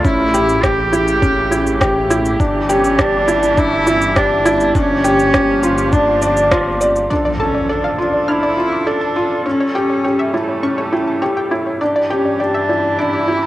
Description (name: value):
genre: piano and strings electronica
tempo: 102 BPM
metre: 4/4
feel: straight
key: D harmonic minor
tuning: A4 = 440 Hz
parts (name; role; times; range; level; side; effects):
- warm cello; melody; 0.0-13.5 s; A3 to G4; -17 LUFS; equal; none
- muted string quartet; sustained chords; 0.0-13.5 s; G2 to A4; -24 LUFS; right 1 dB; stereo widening, sidechain pumping
- felt-muted upright piano; riff; 0.0-13.5 s; C#4 to D5; -17 LUFS; equal; analog delay
- dark detuned saw bass; bass; 0.0-7.1 s; G1 to A1; -24 LUFS; equal; sidechain pumping
- electronic kick drum; drums; 0.0-6.6 s; none; -19 LUFS; equal; none
- electronic shaker and rim click; drums; 0.0-7.1 s; none; -21 LUFS; equal; overdrive, low-pass filter on perc, low-pass filter on snare, low-pass filter on room
- analog pluck; arpeggios; 7.1-13.5 s; C#5 to F6; -24 LUFS; equal; chorus, sidechain pumping, analog delay
- impact; sound effects; 7.1-9.5 s; none; -26 LUFS; equal; none
room: wet spring reverb, RT60 1.9 s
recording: home recording on cassette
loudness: -13 LUFS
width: side -15 dB against mid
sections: 0.0-7.1 A section; 7.1-13.5 B section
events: band accent 6.5; impact 7.1-9.5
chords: 0.0 A7; 2.4 Em7/G; 4.8 Gm7; 7.1 Dm; 9.5 A7; 11.8 Em7/G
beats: | 0.05 0.64 1.22 1.81 | 2.40 2.99 3.58 4.16 | 4.75 5.34 5.93 6.52 | 7.11 7.69 8.28 8.87 | 9.46 10.05 10.63 11.22 | 11.81 12.40 12.99